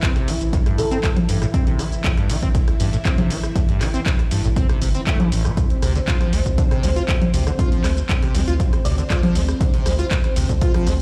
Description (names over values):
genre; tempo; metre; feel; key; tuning
acid house; 119 BPM; 4/4; straight; A minor; A4 = 440 Hz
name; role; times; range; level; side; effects
string machine, full ensemble; sustained chords; 0.0-11.0 s; E3 to C5; -32 LUFS; equal; phaser, ensemble chorus, sidechain pumping
liquid acid bass; riff; 0.0-10.9 s; A1 to F4; -28 LUFS; equal; tube saturation, lush chorus, cassette tape, sidechain pumping, digital delay
electronic kick drum; drums; 0.0-10.7 s; none; -22 LUFS; equal; none
punchy analog drum machine; drums; 0.0-11.0 s; congas, handclaps, hi-hat, rim click, shaker; -28 LUFS; equal; none
saturated sub bass; bass; 0.3-11.0 s; G1 to D2; -24 LUFS; equal; sidechain pumping
thumb-piano-like synth pluck; melody; 0.8-1.0, 8.8-9.1 s; A4 to D5; -31 LUFS; equal; ensemble chorus, cassette tape, digital delay
room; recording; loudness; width
little or no reverb; played on a big sound system in a bare room, large studio reverb; -19 LUFS; mono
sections
0.0-11.0 A section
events
none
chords
0.0 Am7; 5.6 Dm7